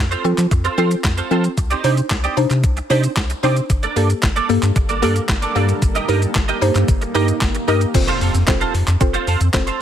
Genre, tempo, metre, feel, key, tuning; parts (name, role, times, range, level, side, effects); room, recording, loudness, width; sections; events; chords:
dance-pop; 113 BPM; 4/4; straight; A4 = 443 Hz
mallet-like synth pluck; accompaniment; 0.0-9.8 s; Bb3 to C5; -22 LUFS; equal; chorus, phaser, sidechain pumping
round analog bass; bass; 0.0-9.7 s; F1 to F3; -19 LUFS; equal; sidechain pumping
twelve-string electric guitar; riff; 0.1-9.8 s; Bb3 to Eb5; -23 LUFS; right 5 dB; ensemble chorus
clean 12-bit digital drum machine; drums; 0.1-9.8 s; crash cymbal, handclaps, hi-hat, kick drum, shaker, snare drum; -20 LUFS; equal; overdrive
granular cloud pad; sustained chords; 4.6-7.9 s; G3 to A4; -27 LUFS; equal; built-in reverb, sidechain pumping
impact; sound effects; 7.9-9.8 s; -29 LUFS; equal
digital ambience; -15 LUFS; side -10 dB against mid
0.0-7.9 A section; 7.9-9.8 B section
impact 7.9-9.8
0.0 F; 1.6 Cmadd9; 3.7 Gmadd9; 5.8 Eb/G; 7.9 F